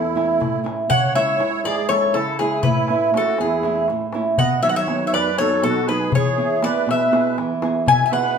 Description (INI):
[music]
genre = greek folk, Greek bouzouki band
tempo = 240 BPM (eighths)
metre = 7/8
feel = straight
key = A major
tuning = A4 = 441 Hz
[part]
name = Greek bouzouki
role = melody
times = 0.0-8.4 s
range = G#4 to G#5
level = -20 LUFS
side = left 3 dB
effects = none
[part]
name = musette accordion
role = second line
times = 0.0-8.4 s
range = E4 to E5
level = -25 LUFS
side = right 5 dB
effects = none
[part]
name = nylon-string guitar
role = accompaniment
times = 0.0-8.4 s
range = E2 to G#4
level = -21 LUFS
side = right 4 dB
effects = none
[part]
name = darbuka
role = percussion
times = 0.0-8.2 s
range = none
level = -26 LUFS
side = left 5 dB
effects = none
[sound]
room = moderate large studio reverb, RT60 0.9 s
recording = band playing live in one room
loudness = -17 LUFS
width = side -6 dB against mid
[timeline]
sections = 0.9-8.4 A section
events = none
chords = 0.0 A; 0.9 C#m; 2.6 A; 4.4 B; 6.1 E